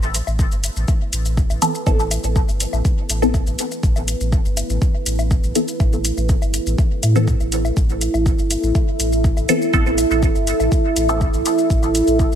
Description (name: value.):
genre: dub techno.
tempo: 122 BPM.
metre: 4/4.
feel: straight.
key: A minor.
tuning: A4 = 440 Hz.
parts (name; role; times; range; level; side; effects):
deep dark ambient pad; sustained chords; 0.2-12.4 s; E4 to E5; -22 LUFS; right 2 dB; chorus, built-in reverb, sidechain pumping.
warm sub bass; bass; 0.0-12.4 s; G1 to A2; -21 LUFS; equal; sidechain pumping.
electronic shaker and hi-hat; drums; 0.0-12.4 s; none; -26 LUFS; left 1 dB; small room ambience.
woodblock; percussion; 0.3-11.9 s; none; -34 LUFS; left 7 dB; sidechain pumping on perc, small room ambience, dub echo.
electronic kick drum; drums; 0.4-12.3 s; none; -18 LUFS; equal; small room ambience.
filtered dub chord stab; stabs; 1.6-11.2 s; E3 to A4; -22 LUFS; left 1 dB; phaser, sidechain pumping, dub echo.
room: light reverb.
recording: none.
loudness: -16 LUFS.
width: side -9 dB against mid.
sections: 0.0-12.4 A section.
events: filter sweep on synth stab 0.0-12.4.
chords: 0.0 Amadd9.